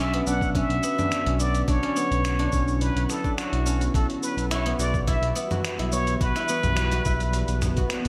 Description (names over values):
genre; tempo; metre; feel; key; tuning
organic downtempo; 106 BPM; 4/4; straight; B minor; A4 = 438 Hz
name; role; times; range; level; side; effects
trumpet with plunger mute; melody; 0.0-7.9 s; F#4 to F#5; -31 LUFS; equal; analog delay
bowed-like drone; sustained chords; 0.0-8.1 s; D3 to C#5; -37 LUFS; equal; built-in reverb, sidechain pumping
guzheng; arpeggios; 0.0-8.1 s; B3 to F#5; -31 LUFS; equal; analog delay
smooth gliding synth bass; bass; 0.0-8.1 s; B1; -28 LUFS; equal; none
dusty soul sampler-style drum kit; drums; 0.1-8.1 s; cabasa, finger snaps, hi-hat, toms; -34 LUFS; equal; none
electronic kick drum; drums; 0.4-7.9 s; none; -29 LUFS; equal; none
swell; sound effects; 7.6-8.1 s; none; -35 LUFS; equal; none
room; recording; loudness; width
moderate echo chamber reverb, RT60 1.8 s, digital ambience; echo-heavy mix; -24 LUFS; mono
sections
0.0-8.1 A section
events
swell 7.6-8.1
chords
0.0 Bmadd9; 3.9 Emadd9/B